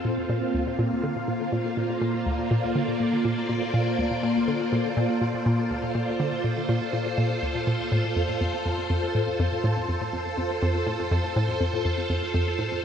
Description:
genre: ambient, sequencer-driven space music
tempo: 122 BPM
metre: 4/4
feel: straight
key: Bb major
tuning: A4 = 440 Hz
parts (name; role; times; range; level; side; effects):
- phased string machine; sustained chords; 0.0-12.8 s; Bb3 to D5; -26 LUFS; equal; ensemble chorus, phaser
- hollow square pluck; riff; 0.0-12.7 s; D2 to D3; -27 LUFS; equal; chorus, ping-pong delay
room: wet huge ambient reverb, RT60 8.4 s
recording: none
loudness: -23 LUFS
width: side -8 dB against mid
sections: 0.0-12.8 A section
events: none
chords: 0.1 Bbmaj7; 7.9 F

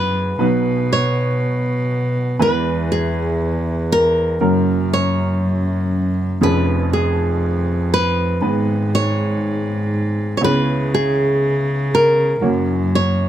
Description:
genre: acoustic folk-pop ballad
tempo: 60 BPM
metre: 4/4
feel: straight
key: unclear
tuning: A4 = 440 Hz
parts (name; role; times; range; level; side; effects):
- nylon-string guitar; melody; 0.0-13.3 s; G#4 to C#5; -20 LUFS; equal; none
- warm upright piano; accompaniment; 0.0-13.3 s; E#1 to C#5; -22 LUFS; right 2 dB; none
- rich cello; bass; 0.0-13.3 s; E2 to C#3; -19 LUFS; equal; none
room: little or no reverb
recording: none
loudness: -16 LUFS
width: side -11 dB against mid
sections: 0.4-13.3 A section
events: none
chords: 0.4 B; 2.4 E; 4.4 F#; 6.4 C#/E#; 8.4 G#m; 10.4 C#m7; 12.4 F#

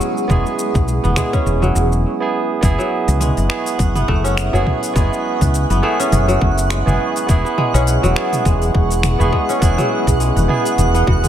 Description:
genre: organic downtempo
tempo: 103 BPM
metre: 4/4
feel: swing 56% on 16ths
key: unclear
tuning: A4 = 437 Hz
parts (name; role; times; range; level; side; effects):
- barky tine electric piano; accompaniment; 0.0-11.3 s; B3 to G#4; -21 LUFS; right 5 dB; sidechain pumping, tape echo
- granular cloud pad; sustained chords; 0.0-11.3 s; G#4 to C#6; -24 LUFS; equal; built-in reverb, sidechain pumping
- kora; arpeggios; 0.0-11.3 s; F#3 to F#4; -22 LUFS; left 1 dB; tape echo
- deep house drum kit; drums; 0.0-11.3 s; finger snaps, hi-hat, shaker, toms; -24 LUFS; equal; none
- woody fretless electric bass; bass; 0.3-11.3 s; E1 to C#2; -17 LUFS; equal; sidechain pumping
- electronic kick drum; drums; 0.3-11.2 s; none; -17 LUFS; equal; none
- twinkling granular texture; texture; 3.2-11.3 s; F#5; -30 LUFS; right 1 dB; built-in reverb
room: light reverb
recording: none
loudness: -14 LUFS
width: side -10 dB against mid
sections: 0.0-2.6 A section; 2.6-11.3 B section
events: break 2.0-2.6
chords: 0.0 E69; 2.6 F#m7; 7.3 E69

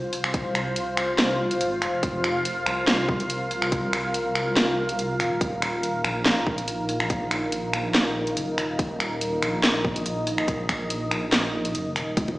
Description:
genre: deep dubstep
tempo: 142 BPM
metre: 4/4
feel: swing 54% on 16ths, half-time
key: unclear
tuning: A4 = 442 Hz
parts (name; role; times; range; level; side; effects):
- deep dark ambient pad; sustained chords; 0.0-12.4 s; Eb4 to F5; -27 LUFS; equal; chorus, built-in reverb
- dark detuned saw bass; bass; 0.0-12.4 s; Eb1 to C2; -31 LUFS; equal; none
- garage drum kit; drums; 0.1-12.3 s; finger snaps, handclaps, hi-hat, snare drum; -25 LUFS; equal; none
- electronic kick drum; drums; 0.3-12.3 s; none; -27 LUFS; equal; none
- congas; percussion; 12.2-12.4 s; none; -26 LUFS; left 1 dB; none
room: wet echo chamber reverb, RT60 1.3 s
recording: played on a big sound system in a bare room, stone room reverb, small speaker sound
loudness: -22 LUFS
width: side -19 dB against mid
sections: 0.0-12.4 A section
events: none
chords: 0.0 F5; 5.4 Eb5

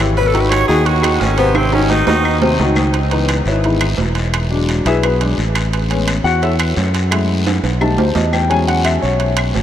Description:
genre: Afro-Cuban jazz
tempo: 173 BPM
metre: 4/4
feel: straight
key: C# minor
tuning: A4 = 438 Hz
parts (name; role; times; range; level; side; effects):
- warm grand piano; accompaniment; 0.0-9.6 s; B2 to A5; -17 LUFS; left 2 dB; analog chorus
- fingered electric bass; bass; 0.0-9.6 s; E1 to F#2; -17 LUFS; equal; none
- claves; percussion; 0.0-9.6 s; none; -30 LUFS; left 3 dB; none
- guiro; percussion; 0.0-9.6 s; none; -28 LUFS; left 4 dB; none
- timbales; percussion; 0.0-9.6 s; none; -22 LUFS; right 6 dB; none
- bright tenor saxophone; second line; 0.2-2.4 s; B3 to C#5; -20 LUFS; right 3 dB; analog delay
room: wet huge ambient reverb, RT60 8.2 s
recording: dreamy mix soaked in reverb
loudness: -13 LUFS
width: side -10 dB against mid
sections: 0.0-2.9 A section; 2.9-9.6 A section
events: tenor saxophone solo 0.0-2.9; drum fill 1.6-2.9, 7.5-8.5; grand piano solo 2.9-9.6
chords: 0.2 G#m7; 1.6 G#7; 2.9 C#m9; 4.3 E9; 5.7 Amaj7; 7.1 F#m7; 7.8 B7alt; 8.5 E69

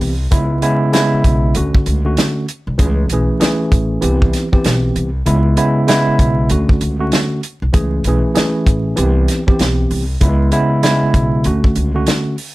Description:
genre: hip hop, boom-bap hip-hop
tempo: 97 BPM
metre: 4/4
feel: swing 61% on 16ths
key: unclear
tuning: A4 = 440 Hz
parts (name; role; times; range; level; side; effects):
- mellow tine electric piano; accompaniment; 0.0-12.4 s; C#3 to G#4; -15 LUFS; equal; medium stereo tremolo, cassette tape
- upright bass; bass; 0.0-12.0 s; A1 to D2; -18 LUFS; equal; none
- warm soul drum kit; drums; 0.0-12.5 s; hi-hat, kick drum, snare drum; -15 LUFS; equal; none
room: light reverb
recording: vinyl crackle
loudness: -12 LUFS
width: side -19 dB against mid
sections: 0.0-12.5 A section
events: kick muted 5.3-5.9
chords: 0.3 C#m7; 1.6 Dmaj7; 2.8 Amaj7; 4.0 Cmaj7; 5.3 C#m7; 6.5 Dmaj7; 7.7 Amaj7; 9.0 Cmaj7; 10.2 C#m7; 11.4 Dmaj7

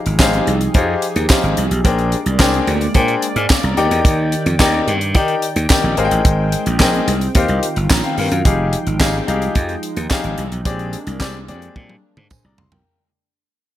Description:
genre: early-eighties boogie funk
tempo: 109 BPM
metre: 4/4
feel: straight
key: F dorian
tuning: A4 = 440 Hz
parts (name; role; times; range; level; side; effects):
- chorused pulse-width pad; sustained chords; 0.0-12.8 s; Eb3 to G5; -25 LUFS; right 2 dB; none
- slap bass; bass; 0.1-12.8 s; F1 to Eb3; -19 LUFS; right 1 dB; none
- tight funk drum kit; drums; 0.1-12.8 s; handclaps, hi-hat, kick drum, snare drum, toms; -17 LUFS; equal; gated reverb
- clear baby grand piano; accompaniment; 0.2-13.0 s; C4 to F6; -20 LUFS; left 4 dB; none
- tambourine; percussion; 0.2-12.4 s; none; -28 LUFS; right 8 dB; none
room: small room ambience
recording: none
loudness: -14 LUFS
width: side -13 dB against mid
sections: 0.0-8.5 A section; 8.5-12.9 B section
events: grand piano fill 7.6-8.5; fade-out 8.5-12.9; drum fill 11.8-12.9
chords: 0.0 Fm9; 1.8 Bb13; 3.8 Ebmaj7; 6.0 Abmaj9; 7.4 Eb69; 8.5 Fm9; 10.7 Bb13

